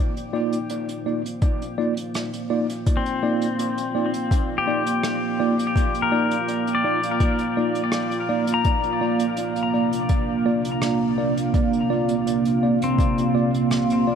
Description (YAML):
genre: ambient dub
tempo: 83 BPM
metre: 4/4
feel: straight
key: C minor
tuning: A4 = 441 Hz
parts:
  - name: deep dark ambient pad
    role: sustained chords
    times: 0.0-14.2 s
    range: C3 to F5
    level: -24 LUFS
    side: right 2 dB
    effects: chorus, built-in reverb
  - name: vintage brush drum kit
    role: drums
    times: 0.2-14.0 s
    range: hi-hat, rim click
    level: -35 LUFS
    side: right 2 dB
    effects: dub echo
  - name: mellow tine electric piano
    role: stabs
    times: 0.3-14.2 s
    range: Bb3 to D5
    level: -26 LUFS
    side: right 1 dB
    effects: medium stereo tremolo, dub echo
  - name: electronic kick drum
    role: drums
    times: 1.4-13.1 s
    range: none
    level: -21 LUFS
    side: equal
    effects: overdrive
  - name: pedal steel guitar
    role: arpeggios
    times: 3.0-14.2 s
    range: C4 to Bb5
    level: -26 LUFS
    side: left 5 dB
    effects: dub echo
room: moderate huge ambient reverb, RT60 5.2 s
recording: none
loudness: -20 LUFS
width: side -7 dB against mid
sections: 0.0-14.2 A section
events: none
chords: 0.0 Cm11; 8.6 Bb/C